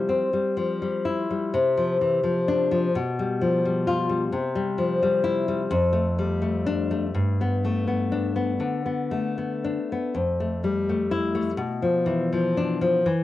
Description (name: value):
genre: romantic piece for solo classical guitar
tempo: 76-89 BPM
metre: 4/4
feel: rubato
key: C major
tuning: A4 = 441 Hz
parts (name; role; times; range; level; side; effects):
- nylon-string guitar; solo; 0.0-13.2 s; F2 to F4; -22 LUFS; left 2 dB; cassette tape
room: moderate spring reverb, RT60 1.3 s, studio ambience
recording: home recording on cassette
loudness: -22 LUFS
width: side -14 dB against mid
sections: 0.0-13.2 A section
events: none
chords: 0.0 C; 1.5 Dm7/C; 2.9 G7/B; 4.3 C; 5.7 Dm/F; 7.2 G; 10.2 Fmaj7; 11.6 Bdim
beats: 0.11 0.82 | 1.55 2.24 2.94 3.64 | 4.32 5.00 5.70 6.42 | 7.16 7.89 8.63 9.40 | 10.17 10.90 11.61 12.34 | 13.07